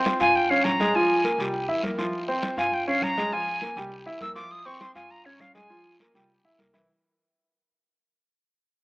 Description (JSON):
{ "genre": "Afro-Cuban jazz", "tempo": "202 BPM", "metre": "4/4", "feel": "straight", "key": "unclear", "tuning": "A4 = 439 Hz", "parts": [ { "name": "warm concert grand piano", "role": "accompaniment", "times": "0.0-6.9 s", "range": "E3 to F5", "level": "-26 LUFS", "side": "equal", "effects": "none" }, { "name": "congas", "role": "percussion", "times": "0.1-6.9 s", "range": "none", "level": "-34 LUFS", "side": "equal", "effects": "none" }, { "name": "guiro", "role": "percussion", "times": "0.1-6.9 s", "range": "none", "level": "-37 LUFS", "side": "equal", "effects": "none" }, { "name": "breathy bright jazz flute", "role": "melody", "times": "0.2-6.0 s", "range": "Db5 to E6", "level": "-25 LUFS", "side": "equal", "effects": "none" }, { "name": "upright bass", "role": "bass", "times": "0.2-6.9 s", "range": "Bb1 to G2", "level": "-42 LUFS", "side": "equal", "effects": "none" } ], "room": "moderate plate reverb, RT60 2.5 s", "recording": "rough home demo mix, AM radio sound", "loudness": "-22 LUFS", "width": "side -28 dB against mid", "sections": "0.0-6.9 A section", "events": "fade-out 0.0-6.9; flute solo 0.0-6.9", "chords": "0.4 Gm7b5; 0.9 Bb5; 1.5 C7; 2.1 F5; 2.7 Gm7b5; 3.3 Bb5; 3.9 C7; 4.5 F5; 5.1 Gm7b5; 5.7 Bb5; 6.3 C7", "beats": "0.05 0.35 0.65 | 0.94 1.24 1.54 1.83 | 2.13 2.43 2.72 3.02 | 3.32 3.62 3.91 4.21 | 4.51 4.80 5.10 5.40 | 5.70 5.99 6.29 6.59" }